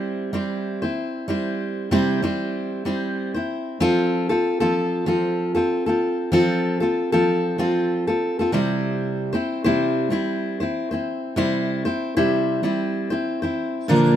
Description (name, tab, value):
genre	pop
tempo	95 BPM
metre	4/4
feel	swing 55% on 16ths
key	F major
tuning	A4 = 440 Hz
part	fingerpicked steel-string acoustic guitar	solo	0.0-14.2 s	Bb2 to C5	-20 LUFS	equal	none
room	light reverb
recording	minimal, uncompressed stereo recording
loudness	-20 LUFS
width	side -10 dB against mid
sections	0.0-3.8 A section; 3.8-14.2 B section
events	none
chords	0.0 C; 3.8 F; 8.5 C